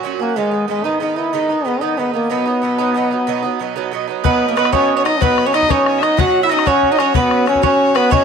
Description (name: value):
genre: celtic folk, Celtic slide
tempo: 124 BPM (dotted quarters)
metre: 12/8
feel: straight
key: B major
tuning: A4 = 439 Hz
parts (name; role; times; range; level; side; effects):
- Irish bouzouki; accompaniment; 0.0-8.2 s; G#2 to F#4; -19 LUFS; right 10 dB; none
- bright trombone; melody; 0.2-8.2 s; G#3 to F#4; -17 LUFS; left 2 dB; none
- mandolin; second line; 4.2-8.2 s; A#4 to F#5; -19 LUFS; right 9 dB; none
- rich fiddle; second line; 4.2-8.2 s; B4 to F#5; -20 LUFS; left 11 dB; none
- bodhran; percussion; 4.2-8.2 s; none; -19 LUFS; left 6 dB; none
room: wet spring reverb, RT60 1.4 s, studio ambience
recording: 1960s-style stereo with parts hard left and right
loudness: -14 LUFS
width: side -6 dB against mid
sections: 0.0-4.2 A section; 4.2-8.2 B section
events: none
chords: 0.4 G#m; 2.3 B; 6.2 F#sus4